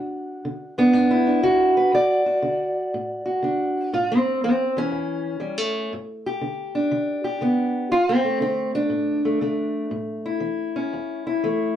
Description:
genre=acoustic country blues, solo or duo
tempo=120 BPM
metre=4/4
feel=swing 66% on 8ths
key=D major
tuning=A4 = 440 Hz
part: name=fingerpicked steel-string acoustic guitar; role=solo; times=0.0-11.8 s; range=D2 to D5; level=-20 LUFS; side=equal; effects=none
room=moderate studio reverb, RT60 0.5 s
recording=heard from further back in the room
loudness=-20 LUFS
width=side -10 dB against mid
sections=0.0-11.8 A section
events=none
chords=0.0 D; 3.9 A; 5.9 G; 7.9 D5; 9.9 A

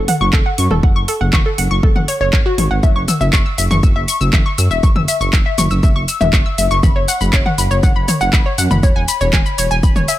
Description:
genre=melodic techno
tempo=120 BPM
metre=4/4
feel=straight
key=unclear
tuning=A4 = 437 Hz
part: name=dark detuned saw bass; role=bass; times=0.0-10.1 s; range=E1 to F#2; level=-18 LUFS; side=equal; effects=sidechain pumping
part: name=analog pluck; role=arpeggios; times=0.1-10.2 s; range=F#4 to E6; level=-19 LUFS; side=left 2 dB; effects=chorus, sidechain pumping, ping-pong delay
part: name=house drum kit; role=drums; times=0.1-10.2 s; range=handclaps, hi-hat, shaker, toms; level=-19 LUFS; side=left 1 dB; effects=none
part: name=electronic kick drum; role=drums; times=0.3-9.9 s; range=none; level=-14 LUFS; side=equal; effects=none
room=little or no reverb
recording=none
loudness=-12 LUFS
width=side -14 dB against mid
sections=0.0-10.2 A section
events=none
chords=0.0 F#m; 2.8 C#m; 6.8 Bsus2/F#; 8.8 E6

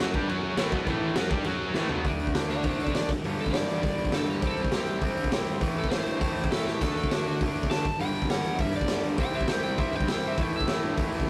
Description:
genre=punk rock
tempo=202 BPM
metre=4/4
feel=straight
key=unclear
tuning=A4 = 440 Hz
part: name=overdriven electric guitar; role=riff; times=0.0-11.3 s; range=G2 to G4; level=-33 LUFS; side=equal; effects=none
part: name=scooped high-gain guitar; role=riff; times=0.0-2.1 s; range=A2 to G4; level=-36 LUFS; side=equal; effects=distortion
part: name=tight distorted guitar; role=riff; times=0.0-11.3 s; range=G2 to G4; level=-39 LUFS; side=equal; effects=none
part: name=fuzz picked electric bass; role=bass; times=0.0-11.2 s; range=G1 to A2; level=-38 LUFS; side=equal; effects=overdrive
part: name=raw garage drum kit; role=drums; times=0.1-11.3 s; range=crash cymbal, hi-hat, kick drum, snare drum, splash cymbal, toms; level=-31 LUFS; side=equal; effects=none
part: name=overdriven semi-hollow guitar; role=melody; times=2.5-11.3 s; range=F#4 to A5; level=-35 LUFS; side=equal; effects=none
room=light reverb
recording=rough rehearsal-room recording, tube saturation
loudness=-28 LUFS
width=mono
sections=0.0-2.1 A section; 2.1-11.3 B section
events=drum fill 1.8, 6.7; overdriven electric guitar solo 2.1-11.3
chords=0.3 F#5; 0.6 A; 1.5 F#5; 1.8 A5; 2.1 D5; 3.1 G5; 4.4 C5; 5.6 A5; 6.8 D; 7.9 G5; 9.2 C5; 10.4 A5

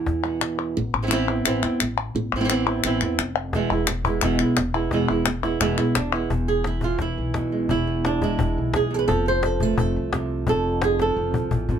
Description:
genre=flamenco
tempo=173 BPM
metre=4/4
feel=straight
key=E phrygian dominant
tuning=A4 = 440 Hz
part: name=flamenco guitar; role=melody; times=0.0-11.8 s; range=E2 to C5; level=-23 LUFS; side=right 3 dB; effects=none
part: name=upright bass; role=bass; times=0.0-11.8 s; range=E1 to E2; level=-27 LUFS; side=left 1 dB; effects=none
part: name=cajon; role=percussion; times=0.1-0.8, 3.5-11.8 s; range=none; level=-27 LUFS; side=left 3 dB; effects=none
part: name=palmas hand claps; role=percussion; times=0.2-6.3 s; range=none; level=-25 LUFS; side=left 8 dB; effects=none
room=light reverb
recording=none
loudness=-20 LUFS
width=side -8 dB against mid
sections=0.8-6.3 A section; 6.3-11.8 B section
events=drum fill 11.0-11.8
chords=0.0 E5; 0.8 Amadd9; 3.5 E; 9.1 F

